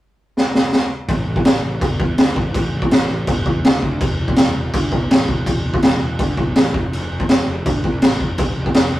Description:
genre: punk rock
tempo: 164 BPM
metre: 4/4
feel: straight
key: A minor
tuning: A4 = 440 Hz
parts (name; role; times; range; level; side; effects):
- raw garage drum kit; drums; 0.4-8.8 s; crash cymbal, kick drum, snare drum; -15 LUFS; equal; none
- fuzz picked electric bass; bass; 1.1-9.0 s; E1 to E2; -23 LUFS; equal; overdrive
room: little or no reverb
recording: rough rehearsal-room recording, warm saturation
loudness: -15 LUFS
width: side -15 dB against mid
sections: 0.0-1.1 A section; 1.1-9.0 B section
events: drum fill 0.4-1.1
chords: none

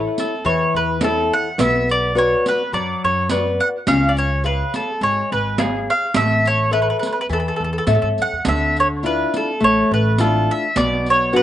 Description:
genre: italian folk, Italian serenade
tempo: 105 BPM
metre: 4/4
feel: swing 53% on 8ths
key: A major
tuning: A4 = 436 Hz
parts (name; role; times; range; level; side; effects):
- nylon-string guitar; accompaniment; 0.0-11.4 s; B2 to E#5; -21 LUFS; left 2 dB; slapback echo
- upright bass; bass; 0.0-11.4 s; G#1 to A2; -23 LUFS; right 1 dB; none
- mandolin; melody; 0.2-11.4 s; G#4 to F#5; -19 LUFS; right 1 dB; slapback echo
- riq; percussion; 0.2-11.4 s; none; -25 LUFS; right 3 dB; slapback echo
room: little or no reverb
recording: recorded outdoors, with no room sound, nothing above 10.7 kHz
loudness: -16 LUFS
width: side -12 dB against mid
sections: 0.0-11.4 A section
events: none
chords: 0.0 A; 1.6 Bm; 3.9 C#; 6.1 A; 8.5 Dmadd9; 10.8 Bm

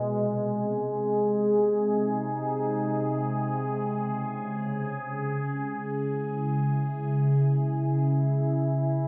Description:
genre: ambient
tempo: free time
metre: none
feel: none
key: unclear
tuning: A4 = 440 Hz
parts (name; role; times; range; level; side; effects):
- evolving wavetable pad; sustained chords; 0.0-9.1 s; C3 to Ab4; -27 LUFS; equal; phaser, built-in reverb
room: wet plate reverb, RT60 2.7 s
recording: cassette tape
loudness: -27 LUFS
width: mono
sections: 0.0-9.1 A section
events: none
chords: 0.0 Ab; 4.0 Dbm; 7.9 Amaj7 (rootless)

